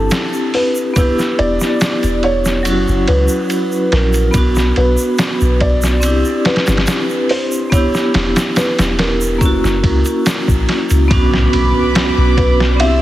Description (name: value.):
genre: trip hop.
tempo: 71 BPM.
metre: 4/4.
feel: straight.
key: B harmonic minor.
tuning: A4 = 440 Hz.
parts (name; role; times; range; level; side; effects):
felt-muted upright piano; melody; 0.0-13.0 s; A4 to E5; -20 LUFS; right 1 dB; tape echo.
vibraphone with hard mallets; accompaniment; 0.0-13.0 s; F#3 to G4; -17 LUFS; equal; tremolo, tape echo.
soft 808-style bass; bass; 0.0-13.0 s; E1 to C#2; -16 LUFS; equal; none.
trip hop sampler-style drum kit; drums; 0.1-13.0 s; hi-hat, kick drum, ride cymbal, snare drum; -18 LUFS; equal; none.
egg shaker; percussion; 0.1-11.1 s; none; -31 LUFS; right 2 dB; none.
warm studio violin section; sustained chords; 11.1-13.0 s; B4 to E6; -21 LUFS; equal; none.
impact; sound effects; 11.1-13.0 s; none; -21 LUFS; equal; none.
room: light reverb, small room reverb.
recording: heavily compressed radio sound, multiband compression.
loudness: -12 LUFS.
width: side -14 dB against mid.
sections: 0.0-11.1 A section; 11.1-13.0 B section.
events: impact 11.1-13.0.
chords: 0.0 Cadd9; 1.0 Em7; 2.7 F#7; 4.3 Bm; 6.0 Cadd9; 7.7 Em7; 9.4 F#7; 11.1 Bmadd9.